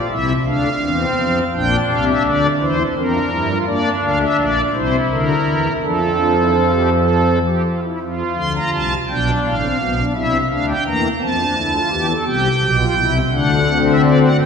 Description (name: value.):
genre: classical, baroque-style 3-part fugue for pipe organ.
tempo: 56 BPM (dotted quarters).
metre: 6/8.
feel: straight.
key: F major from 3.7 s.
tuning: A4 = 435 Hz.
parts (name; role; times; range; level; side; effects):
pipe organ, strings celeste; solo; 0.0-14.5 s; G1 to C6; -15 LUFS; equal; none.
room: wet church reverb, RT60 2.8 s.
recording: heard from further back in the room.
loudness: -15 LUFS.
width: side -6 dB against mid.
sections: 0.0-8.0 A section; 8.0-14.5 B section.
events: none.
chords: 0.5 Dm; 1.5 Gm/Bb; 2.6 Edim; 3.7 Bb; 4.7 C7; 5.8 F; 9.1 G7; 10.1 C7; 11.2 F; 12.3 C; 13.3 D7.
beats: 0.47 | 1.54 2.62 | 3.68 4.75 | 5.83 6.92 | 8.01 9.08 | 10.15 11.21 | 12.27 13.33 | 14.39.